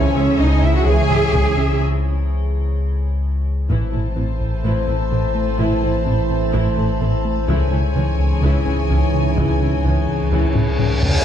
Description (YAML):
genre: cinematic, hybrid orchestral and electronic film score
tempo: 127 BPM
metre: 4/4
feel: straight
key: unclear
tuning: A4 = 440 Hz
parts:
  - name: warm symphonic violin section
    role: melody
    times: 0.0-1.8 s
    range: E5 to G#5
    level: -31 LUFS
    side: left 4 dB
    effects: none
  - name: rich symphonic violin section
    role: second line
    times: 0.0-11.1 s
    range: C5 to A5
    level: -28 LUFS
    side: left 3 dB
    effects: none
  - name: warm symphonic viola section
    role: accompaniment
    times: 0.0-10.9 s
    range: E3 to E5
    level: -28 LUFS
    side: right 1 dB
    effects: none
  - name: dark French horn section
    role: sustained chords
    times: 0.0-11.0 s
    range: C4 to E5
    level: -28 LUFS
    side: left 2 dB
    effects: none
  - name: mellow trombone section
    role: sustained chords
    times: 0.0-11.0 s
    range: G#2 to E3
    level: -28 LUFS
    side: right 5 dB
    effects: none
  - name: metallic inharmonic drone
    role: sustained chords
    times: 0.0-11.2 s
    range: E3 to C#5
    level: -27 LUFS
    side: left 2 dB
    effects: chorus, built-in reverb
  - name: soft round pluck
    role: arpeggios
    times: 0.0-10.9 s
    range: C#3 to A4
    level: -28 LUFS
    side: left 2 dB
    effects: chorus, ping-pong delay
  - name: round analog bass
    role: riff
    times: 0.0-11.2 s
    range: C#2 to A3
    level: -24 LUFS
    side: right 1 dB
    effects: none
  - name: punchy sub bass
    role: bass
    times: 0.0-11.2 s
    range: A1 to C#2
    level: -21 LUFS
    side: left 1 dB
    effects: none
  - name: rich symphonic cello section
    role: bass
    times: 0.0-10.9 s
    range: A2 to G#4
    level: -24 LUFS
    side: right 3 dB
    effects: none
  - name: warm symphonic double bass section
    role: bass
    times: 0.0-10.9 s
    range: A1 to C#2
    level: -24 LUFS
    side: right 2 dB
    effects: none
  - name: taiko ensemble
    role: drums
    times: 1.1-4.6, 7.5-11.2 s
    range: none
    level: -24 LUFS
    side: left 1 dB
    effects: none
  - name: reverse cymbal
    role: sound effects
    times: 10.3-11.2 s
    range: none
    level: -25 LUFS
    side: equal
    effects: none
room: moderate scoring stage reverb, RT60 1.7 s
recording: dark, warm production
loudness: -16 LUFS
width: side -9 dB against mid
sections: 0.0-3.7 A section; 3.7-11.2 B section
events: break 1.8-3.7; drum fill 3.0-3.7, 10.6-11.2; reverse cymbal 10.3-11.2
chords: 0.0 C#m; 3.7 Am; 7.5 C#m